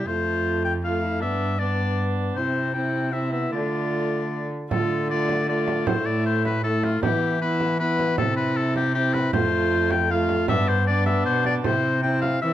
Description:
classical, renaissance-style consort dance; 156 BPM; 3/4; straight; D dorian; A4 = 440 Hz
bright oboe; melody; 0.0-12.5 s; F4 to G5; -26 LUFS; left 5 dB
warm viola; second line; 0.0-12.5 s; D4 to F4; -28 LUFS; right 4 dB
warm trombone; accompaniment; 0.0-12.5 s; A3 to C4; -28 LUFS; left 2 dB
warm cello; bass; 0.0-12.5 s; F2 to E3; -27 LUFS; right 1 dB
frame drum; percussion; 4.7-12.4 s; -29 LUFS; right 4 dB
moderate stone room reverb, RT60 1.0 s; dark, warm production; -21 LUFS; side -12 dB against mid
0.0-4.7 A section; 4.7-12.5 A section
0.1 F; 1.2 G; 2.4 C; 3.5 Dm; 5.9 A5; 7.0 Em; 8.2 C; 9.3 F; 10.5 G; 11.7 C

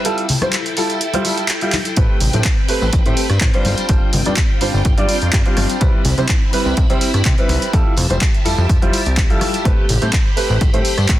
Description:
filtered disco house; 125 BPM; 4/4; swing 53% on 16ths; A4 = 440 Hz
warm grand piano; accompaniment; 0.0-10.9 s; G3 to D5; -21 LUFS; equal; phaser, sidechain pumping, low-pass filter
phased string machine; sustained chords; 0.0-11.2 s; C4 to B5; -24 LUFS; equal; ensemble chorus, phaser, sidechain pumping, low-pass filter
punchy analog drum machine; drums; 0.0-11.2 s; handclaps, hi-hat, rim click; -22 LUFS; right 1 dB
tambourine and congas; percussion; 0.1-11.2 s; -26 LUFS; left 2 dB; sidechain pumping on perc, low-pass filter on perc
fat analog bass; bass; 2.0-11.2 s; F1 to C3; -18 LUFS; equal; sidechain pumping, low-pass filter
electronic kick drum; drums; 2.0-11.2 s; -16 LUFS; equal
digital ambience; dense, heavily limited modern master; -14 LUFS; side -14 dB against mid
0.0-11.2 A section
break 0.1-2.0; drum fill 1.7
0.1 Fmaj9; 2.0 Am9; 3.7 G7sus4; 5.8 Cmaj7; 7.7 Fmaj9; 9.7 Am9

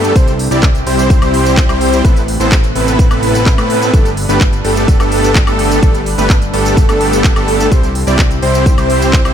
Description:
EDM, festival progressive house; 127 BPM; 4/4; straight; G major; A4 = 440 Hz
lush unison pad; sustained chords; 0.0-9.3 s; C3 to B4; -22 LUFS; left 1 dB; chorus, sidechain pumping
wide unison lead; arpeggios; 0.0-9.3 s; A4 to D5; -18 LUFS; equal; sidechain pumping, dub echo
supersaw chords; riff; 0.0-9.3 s; G3 to D5; -16 LUFS; right 1 dB; vintage 12-bit sampler grit, sidechain pumping, dub echo
fat analog bass; bass; 0.0-9.3 s; G1 to A2; -17 LUFS; equal; sidechain pumping
pop drum kit; drums; 0.0-9.3 s; handclaps, hi-hat, tambourine, woodblock; -20 LUFS; equal
electronic kick drum; drums; 0.2-9.2 s; -10 LUFS; equal
little or no reverb; -9 LUFS; side -9 dB against mid
0.0-9.3 A section
0.2 C; 2.0 Amadd9; 3.9 Gadd9; 7.7 C

